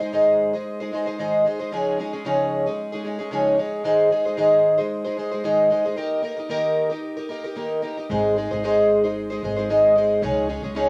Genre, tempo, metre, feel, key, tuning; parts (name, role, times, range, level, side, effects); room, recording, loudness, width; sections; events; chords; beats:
pop; 113 BPM; 4/4; swing 55% on 16ths; Ab major; A4 = 441 Hz
picked plugged-in twelve-string acoustic guitar; accompaniment; 0.0-10.9 s; Ab2 to C5; -22 LUFS; equal
upright bass; bass; 8.1-10.9 s; Ab1 to Db2; -34 LUFS; equal
wet club reverb, RT60 0.6 s; -22 LUFS; mono
0.0-10.9 A section
0.0 Ab; 1.7 Dbadd9; 3.8 Ab; 6.0 Eb; 8.1 Ab; 10.2 Dbadd9
0.13 0.66 1.19 | 1.72 2.25 2.78 3.31 | 3.85 4.38 4.91 5.44 | 5.97 6.50 7.03 7.57 | 8.10 8.63 9.16 9.69 | 10.22 10.75